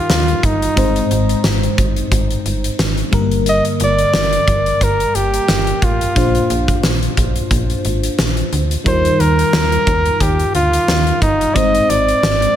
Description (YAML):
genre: 1980s-style pop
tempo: 89 BPM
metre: 4/4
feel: swing 55% on 16ths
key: Eb major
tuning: A4 = 440 Hz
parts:
  - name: warm flugelhorn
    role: melody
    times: 0.0-12.6 s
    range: Eb4 to Eb5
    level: -17 LUFS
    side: equal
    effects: ping-pong delay
  - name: FM electric piano with soft pad layer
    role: accompaniment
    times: 0.0-12.6 s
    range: G2 to C5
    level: -20 LUFS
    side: left 2 dB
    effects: chorus
  - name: slap-like FM bass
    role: bass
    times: 0.1-12.5 s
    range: G1 to Eb2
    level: -19 LUFS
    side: equal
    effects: none
  - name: huge arena drum kit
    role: drums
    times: 0.1-12.6 s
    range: hi-hat, kick drum, snare drum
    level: -18 LUFS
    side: equal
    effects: gated reverb
room: light reverb, small room ambience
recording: none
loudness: -13 LUFS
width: side -10 dB against mid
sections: 0.0-12.6 A section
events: none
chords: 0.0 Ebadd9; 0.8 Ab; 3.1 Gm; 6.2 Bbadd9; 8.9 Ebadd9; 11.6 Ab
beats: 0.10 | 0.77 1.45 2.12 2.79 | 3.47 4.14 4.82 5.49 | 6.16 6.84 7.51 8.19 | 8.86 9.54 10.21 10.88 | 11.56 12.23